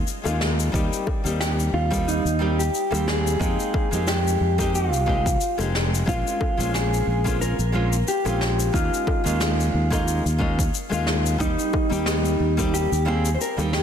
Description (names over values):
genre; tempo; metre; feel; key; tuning
sunset chillout; 90 BPM; 4/4; swing 55% on 16ths; unclear; A4 = 440 Hz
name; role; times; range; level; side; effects
shaker and snare drum; drums; 0.1-13.8 s; none; -29 LUFS; left 2 dB; soft clipping on snare
nylon-string guitar; accompaniment; 0.2-13.8 s; G3 to G5; -27 LUFS; moving between left 5 dB and right 4 dB; auto-pan, ping-pong delay
fingered electric bass; bass; 0.3-13.8 s; F1 to F2; -24 LUFS; equal; none
bongos; percussion; 0.3-13.7 s; none; -34 LUFS; left 6 dB; none
electronic kick drum; drums; 0.7-12.7 s; none; -26 LUFS; equal; overdrive
mellow electric guitar; melody; 1.4-13.8 s; Eb4 to C5; -26 LUFS; equal; spring reverb, ping-pong delay
room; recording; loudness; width
light reverb; dense, heavily limited modern master; -20 LUFS; side -8 dB against mid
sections
0.0-13.8 A section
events
none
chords
0.0 Eb9sus4; 0.7 Cm7/Eb; 3.4 Fm11; 6.1 Bbm9; 8.7 Eb9sus4; 11.4 Cm7/Eb